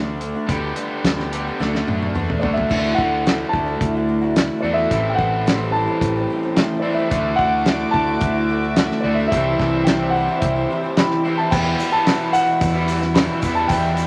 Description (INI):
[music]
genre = folk rock and heartland rock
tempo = 109 BPM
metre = 4/4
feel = straight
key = E minor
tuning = A4 = 441 Hz
[part]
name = picked twelve-string acoustic guitar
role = accompaniment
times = 0.0-14.1 s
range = E2 to G4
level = -27 LUFS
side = equal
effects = none
[part]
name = raw garage guitar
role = riff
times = 0.0-14.1 s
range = E2 to G4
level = -27 LUFS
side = equal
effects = overdrive
[part]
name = fingered electric bass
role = bass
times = 0.0-14.1 s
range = A1 to F#2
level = -28 LUFS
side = equal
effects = none
[part]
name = damped 70s drum kit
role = drums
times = 0.2-14.1 s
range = crash cymbal, hi-hat, kick drum, snare drum, toms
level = -23 LUFS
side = equal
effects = none
[part]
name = dark grand piano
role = melody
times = 2.4-14.1 s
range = D5 to B5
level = -24 LUFS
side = equal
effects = none
[part]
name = warm chamber string section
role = sustained chords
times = 7.1-14.1 s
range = E4 to D6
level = -30 LUFS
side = equal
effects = none
[part]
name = egg shaker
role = percussion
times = 11.5-14.1 s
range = none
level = -45 LUFS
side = equal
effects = none
[sound]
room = wet large studio reverb, RT60 0.9 s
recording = none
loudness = -19 LUFS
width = mono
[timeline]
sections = 0.0-2.7 A section; 2.7-11.5 B section; 11.5-14.1 C section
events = drum fill 1.6-2.7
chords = 0.5 G/D; 1.6 Dadd9; 4.9 Am7; 7.1 Dadd9; 9.3 C; 11.5 Emadd9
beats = | 0.48 1.04 1.59 2.15 | 2.70 3.25 3.81 4.36 | 4.91 5.47 6.02 6.57 | 7.12 7.67 8.22 8.77 | 9.32 9.87 10.42 10.97 | 11.52 12.07 12.61 13.16 | 13.71